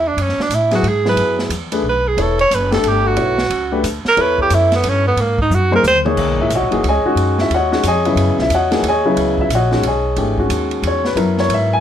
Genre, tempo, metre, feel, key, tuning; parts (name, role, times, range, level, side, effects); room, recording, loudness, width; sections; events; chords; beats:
modal jazz; 180 BPM; 3/4; swing 64% on 8ths; C# dorian from 6.2 s; A4 = 440 Hz
warm tenor saxophone; melody; 0.0-6.0 s; A#3 to C#5; -16 LUFS; right 3 dB
upright bass; bass; 0.0-11.8 s; E1 to A2; -20 LUFS; equal
open jazz drum kit; drums; 0.2-11.6 s; crash cymbal, hi-hat, kick drum, ride cymbal, snare drum, toms; -25 LUFS; right 1 dB
warm grand piano; accompaniment; 0.7-11.8 s; C#3 to G#5; -17 LUFS; left 2 dB
moderate studio reverb, RT60 0.9 s; -13 LUFS; side -10 dB against mid
0.0-6.2 A section; 6.2-11.8 A section
tenor saxophone solo 0.0-6.2; drum fill 5.5-6.2
0.0 F#m11; 2.2 Em11; 5.2 G#7sus2; 6.2 C#9sus4
| 0.17 0.51 0.84 | 1.18 1.51 1.84 | 2.18 2.51 2.84 | 3.18 3.51 3.84 | 4.18 4.51 4.84 | 5.17 5.51 5.84 | 6.17 6.51 6.84 | 7.17 7.50 7.84 | 8.17 8.50 8.84 | 9.17 9.50 9.83 | 10.16 10.50 10.83 | 11.16 11.49